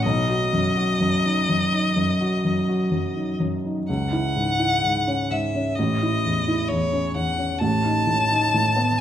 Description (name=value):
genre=classical, romantic duo for violin and grand piano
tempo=64 BPM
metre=4/4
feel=rubato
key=unclear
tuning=A4 = 441 Hz
part: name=clear violin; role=melody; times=0.0-9.0 s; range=C#5 to A5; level=-24 LUFS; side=left 2 dB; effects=none
part: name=dark baby grand piano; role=accompaniment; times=0.0-9.0 s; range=A1 to F#4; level=-22 LUFS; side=equal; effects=none
room=wet recital hall reverb, RT60 1.5 s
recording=none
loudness=-20 LUFS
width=side -10 dB against mid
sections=0.0-9.0 A section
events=none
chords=0.0 B; 3.9 C#m; 5.8 A6; 7.6 B7/A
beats=| 0.04 1.00 1.96 2.92 | 3.88 4.83 5.77 6.69 | 7.61 8.54